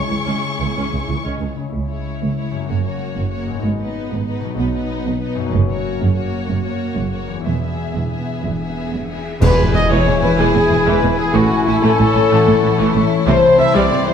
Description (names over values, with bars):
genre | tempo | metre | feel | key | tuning
cinematic, heroic adventure film score | 125 BPM (dotted quarters) | 12/8 | straight | C# dorian, E major from 9.4 s | A4 = 441 Hz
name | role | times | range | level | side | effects
warm symphonic violin section | melody | 0.0-14.1 s | E4 to C#6 | -28 LUFS | left 4 dB | none
rich studio violin section | second line | 0.0-14.1 s | C4 to C#5 | -29 LUFS | left 5 dB | none
warm symphonic viola section | accompaniment | 0.0-14.1 s | E3 to E4 | -24 LUFS | right 2 dB | none
concert harp | arpeggios | 0.0-14.1 s | E2 to E5 | -24 LUFS | left 8 dB | none
mellow French horn section | sustained chords | 0.1-1.7, 9.4-14.1 s | G#3 to E5 | -18 LUFS | left 3 dB | none
warm symphonic cello section | bass | 0.1-14.1 s | C#2 to C3 | -23 LUFS | right 3 dB | none
warm symphonic double bass section | bass | 0.1-14.1 s | E1 to C#2 | -23 LUFS | right 4 dB | none
cymbal swell, clash cymbals and concert bass drum | percussion | 5.5-10.0 s | none | -26 LUFS | equal | none
clear oboe | second line | 9.4-14.1 s | G#5 to C#6 | -26 LUFS | right 1 dB | none
mellow clarinet | second line | 9.4-14.1 s | E4 | -25 LUFS | equal | none
mellow trumpet section | stabs | 9.4-14.1 s | E4 to E5 | -22 LUFS | right 2 dB | none
timpani | percussion | 9.4-9.9 s | E2 | -22 LUFS | equal | none
mellow large flute ensemble | second line | 10.4-14.1 s | E5 to B5 | -26 LUFS | left 3 dB | none
room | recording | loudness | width
wet recital hall reverb, RT60 1.4 s | none | -15 LUFS | side -8 dB against mid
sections
0.0-1.7 A section; 1.7-9.4 B section; 9.4-14.1 C section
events
band accent 9.4-9.7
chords
0.0 C#m; 2.7 F#; 3.6 G#m; 4.6 B; 5.5 F#; 7.5 E; 11.3 A; 13.3 C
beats
0.27 0.76 1.25 | 1.74 2.22 2.70 3.17 | 3.65 4.12 4.59 5.06 | 5.54 6.01 6.49 6.97 | 7.46 7.95 8.44 8.93 | 9.42 9.90 10.38 10.87 | 11.35 11.84 12.31 12.79 | 13.27 13.74